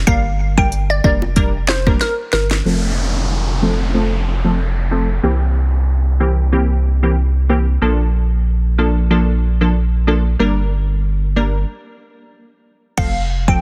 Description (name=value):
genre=dancehall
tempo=93 BPM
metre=4/4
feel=swing 56% on 16ths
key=F major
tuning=A4 = 442 Hz
part: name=warm sub bass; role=bass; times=0.0-13.6 s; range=F1 to C2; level=-19 LUFS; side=equal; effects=none
part: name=glassy wavetable pluck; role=melody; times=0.1-2.5, 13.0-13.6 s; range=Bb4 to G5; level=-23 LUFS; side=equal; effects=chorus, tape echo
part: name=wavetable chord stab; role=accompaniment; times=0.1-13.6 s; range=E3 to Bb4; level=-22 LUFS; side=equal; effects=low-pass filter
part: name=afro-pop drum kit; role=drums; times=0.1-2.6, 13.0-13.6 s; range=crash cymbal, handclaps, hi-hat, kick drum, rim click, snare drum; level=-20 LUFS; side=equal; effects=none
part: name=bongos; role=percussion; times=1.0-2.6 s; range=none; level=-28 LUFS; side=equal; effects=none
part: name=downlifter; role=sound effects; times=2.7-7.8 s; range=none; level=-29 LUFS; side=equal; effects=none
room=digital ambience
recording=dense, heavily limited modern master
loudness=-17 LUFS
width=mono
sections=0.0-2.7 A section; 2.7-13.0 B section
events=drum fill 2.0-2.7; filter sweep on synth stab 2.7-13.0; stop 11.7-13.0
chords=0.1 Gm; 2.7 F; 5.2 C7; 7.8 Bbmaj7; 10.4 Gm; 13.0 F